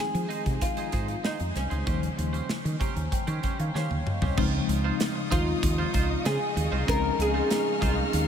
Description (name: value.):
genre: polished 1980s jazz-funk pop.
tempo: 96 BPM.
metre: 4/4.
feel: straight.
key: Db major.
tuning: A4 = 439 Hz.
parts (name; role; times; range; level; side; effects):
oud; melody; 0.0-8.3 s; Db4 to Bb4; -30 LUFS; equal; diffuse ambient delay.
mellow tine electric piano; accompaniment; 0.0-8.3 s; Db3 to Bb5; -32 LUFS; left 4 dB; medium stereo tremolo, analog chorus.
woody fretless electric bass; bass; 0.0-8.3 s; C2 to F3; -28 LUFS; equal; none.
twangy electric guitar; riff; 0.1-8.2 s; Db4 to C5; -35 LUFS; right 4 dB; analog chorus.
modern studio drum kit; drums; 0.1-8.3 s; crash cymbal, hi-hat, kick drum, snare drum, toms; -31 LUFS; equal; none.
warm studio string section; sustained chords; 4.4-8.3 s; Eb5 to F6; -36 LUFS; left 2 dB; none.
room: moderate huge ambient reverb, RT60 5.2 s.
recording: dreamy mix soaked in reverb.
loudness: -24 LUFS.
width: side -8 dB against mid.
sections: 0.0-4.4 A section; 4.4-8.3 B section.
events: tine electric piano fill 2.5-4.4; drum fill 3.8-4.4.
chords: 0.0 Fm7; 1.9 Eb13; 4.4 Dbmaj9.